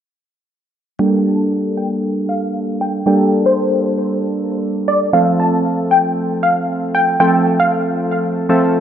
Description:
pop; 116 BPM; 4/4; straight; G minor; A4 = 441 Hz
wide unison pluck; melody; 1.0-8.0 s; C5 to A5; -17 LUFS; left 1 dB; phaser, low-pass filter, digital delay
warm analog keys; accompaniment; 1.0-8.8 s; F3 to A4; -16 LUFS; right 1 dB; chorus, low-pass filter
moderate plate reverb, RT60 2.7 s; -14 LUFS; side -9 dB against mid
1.0-8.8 A section
filter sweep 1.0-8.8
1.0 Gmadd9; 5.1 F
| 1.00 1.51 2.03 2.55 | 3.07 3.58 4.10 4.62 | 5.13 5.65 6.17 6.69 | 7.20 7.72 8.24 8.76

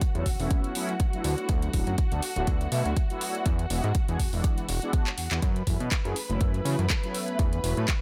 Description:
filtered disco house; 122 BPM; 4/4; swing 55% on 16ths; A4 = 442 Hz
clear studio string section; sustained chords; 0.0-8.0 s; F#4 to B5; -38 LUFS; equal; sidechain pumping, low-pass filter
electronic kick drum; drums; 0.0-8.0 s; -28 LUFS; equal; studio ambience
house drum kit; drums; 0.0-8.0 s; handclaps, hi-hat; -36 LUFS; equal; sidechain pumping on hats, studio ambience
mellow synth brass; accompaniment; 0.1-7.8 s; E3 to A4; -36 LUFS; equal; chorus, phaser, sidechain pumping, low-pass filter
fat analog bass; bass; 0.1-7.9 s; D1 to C#3; -31 LUFS; equal; sidechain pumping, low-pass filter
digital ambience; -27 LUFS; mono
0.0-8.0 A section
drum fill 5.1-5.4
0.0 A69/E; 1.2 D69; 3.5 E7; 5.4 F#m7; 7.1 A69/E
0.02 0.51 1.00 | 1.49 1.98 2.48 2.97 | 3.46 3.95 4.44 4.93 | 5.43 5.92 6.41 6.90 | 7.39 7.88

